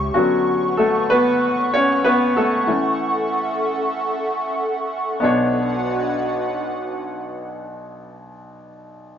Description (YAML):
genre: pop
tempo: 95 BPM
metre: 4/4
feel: straight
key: B minor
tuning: A4 = 439 Hz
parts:
  - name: clear concert grand piano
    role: accompaniment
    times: 0.0-9.2 s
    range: B1 to C#5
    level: -19 LUFS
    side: left 1 dB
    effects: none
  - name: airy breathy pad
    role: sustained chords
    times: 0.0-8.3 s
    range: D3 to C#6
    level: -23 LUFS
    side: right 1 dB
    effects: chorus
room: wet booth ambience, RT60 0.2 s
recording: rough rehearsal-room recording, nothing above 7.4 kHz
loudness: -17 LUFS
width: side -8 dB against mid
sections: 0.0-5.2 A section; 5.2-7.8 B section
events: grand piano solo 0.0-5.2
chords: 0.2 Bmadd9/D; 2.7 F#m7; 5.2 Bmadd9